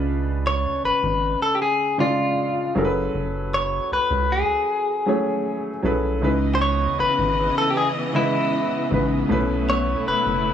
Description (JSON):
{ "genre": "R&B", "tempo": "78 BPM", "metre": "4/4", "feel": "straight", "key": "C# minor", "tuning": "A4 = 440 Hz", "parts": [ { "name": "clear grand piano", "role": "accompaniment", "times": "0.0-10.5 s", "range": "B2 to D#5", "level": "-24 LUFS", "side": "equal", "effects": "none" }, { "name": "rubbery square bass", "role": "bass", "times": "0.0-10.5 s", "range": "F#1 to C#2", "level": "-26 LUFS", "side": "right 1 dB", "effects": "none" }, { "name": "direct-recorded clean electric guitar", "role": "melody", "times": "0.5-10.5 s", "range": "E4 to C#5", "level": "-22 LUFS", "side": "left 2 dB", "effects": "harmonic tremolo, analog delay" }, { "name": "rich studio string section", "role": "sustained chords", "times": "6.2-10.5 s", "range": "C#3 to D#5", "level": "-26 LUFS", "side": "left 1 dB", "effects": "none" } ], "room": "small room ambience", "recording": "dry, gritty hardware recording, studio reverb", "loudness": "-19 LUFS", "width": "side -9 dB against mid", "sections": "0.0-10.5 A section", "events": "none", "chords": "0.0 C#7b9; 2.8 F#m11; 6.2 C#m9; 9.3 B9sus4" }